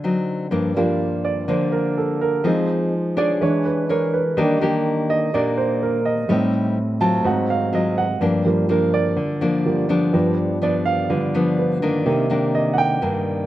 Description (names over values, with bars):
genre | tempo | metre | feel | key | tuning
bossa nova | 125 BPM | 4/4 | straight | G minor | A4 = 438 Hz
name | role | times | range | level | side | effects
nylon-string guitar | accompaniment | 0.0-13.5 s | G2 to C#5 | -20 LUFS | left 2 dB | none
warm baby grand piano | accompaniment | 0.8-13.5 s | G2 to A5 | -21 LUFS | right 3 dB | slapback echo
room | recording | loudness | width
little or no reverb | recorded outdoors, with no room sound | -18 LUFS | side -14 dB against mid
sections
0.5-13.5 A section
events
grand piano solo 0.5-13.5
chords
0.0 D7b9; 0.5 Gm7; 2.5 Fm7; 3.4 E6; 4.4 Ebmaj7; 6.3 Am7b5; 7.3 Ab6; 8.2 Gm7; 10.1 G7; 12.1 Cm9